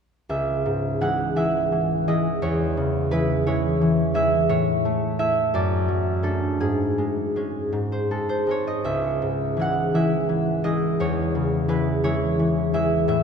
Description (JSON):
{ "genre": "classical, solo harp piece", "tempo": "57 BPM (dotted quarters)", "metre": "6/8", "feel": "rubato", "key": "C# minor", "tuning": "A4 = 439 Hz", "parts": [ { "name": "concert harp", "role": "solo", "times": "0.3-13.2 s", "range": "C#2 to F#5", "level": "-20 LUFS", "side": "equal", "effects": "none" } ], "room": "wet cathedral reverb, RT60 4.5 s", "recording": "minimal, uncompressed stereo recording", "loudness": "-20 LUFS", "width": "side -6 dB against mid", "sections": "0.3-13.2 A section", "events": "none", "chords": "0.3 C#m; 2.4 C#m/E; 4.5 A; 5.5 D/F#; 6.6 C#5/G#; 7.7 G#; 8.9 C#m; 11.0 C#m/E" }